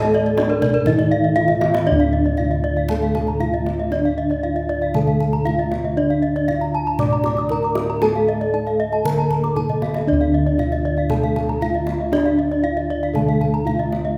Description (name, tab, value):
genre	Balinese gamelan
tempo	117 BPM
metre	4/4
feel	straight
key	D pelog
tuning	A4 = 440 Hz
part	gamelan-type bronze metallophone	melody	0.0-14.2 s	D4 to D5	-26 LUFS	equal	none
part	gamelan-type bronze metallophone	accompaniment	0.0-14.2 s	D3 to D4	-30 LUFS	equal	none
part	gamelan-type bronze metallophone	arpeggios	0.0-13.9 s	D5 to D6	-28 LUFS	equal	none
part	gamelan-type bronze metallophone	arpeggios	0.0-14.2 s	Bb4-20c to Eb6+20c	-28 LUFS	equal	none
part	gamelan-type bossed gongs	bass	0.0-14.2 s	D2 to A4-30c	-24 LUFS	equal	none
part	kendang	percussion	0.0-14.0 s	none	-30 LUFS	equal	none
room	moderate scoring stage reverb, RT60 1.6 s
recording	none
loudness	-19 LUFS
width	mono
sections	0.0-1.9 A section; 1.9-14.2 B section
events	drum fill 1.5-1.9, 9.6-10.1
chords	none